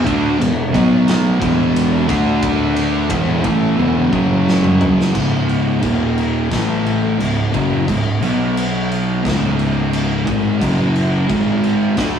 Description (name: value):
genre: stoner and doom metal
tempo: 88 BPM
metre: 4/4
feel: straight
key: C# phrygian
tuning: A4 = 440 Hz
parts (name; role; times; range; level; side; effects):
- thick fuzz guitar; riff; 0.0-12.2 s; C#2 to D4; -19 LUFS; left 5 dB; distortion
- thick fuzz guitar; riff; 0.0-12.2 s; C#2 to D4; -18 LUFS; right 5 dB; distortion
- tight distorted guitar; riff; 0.0-5.1 s; E2 to D4; -26 LUFS; equal; distortion
- fuzz picked electric bass; bass; 0.0-12.2 s; C#1 to D2; -23 LUFS; left 1 dB; overdrive
- raw garage drum kit; drums; 0.1-12.1 s; crash cymbal, kick drum, ride cymbal, snare drum, toms; -22 LUFS; left 1 dB; none
room: moderate studio reverb, RT60 0.5 s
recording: rough rehearsal-room recording, warm saturation, small room ambience, faint mains hum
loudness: -14 LUFS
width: side -8 dB against mid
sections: 0.0-5.1 A section; 5.1-12.2 B section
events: drum fill 3.8-5.1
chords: 0.0 E5; 0.7 B5; 1.4 E5; 2.1 D5; 3.1 E5; 4.1 F#5; 5.1 C#5; 5.8 D#5; 6.5 A5; 7.2 C#5; 8.2 B5; 9.2 C#5; 10.6 F#5; 11.3 G#5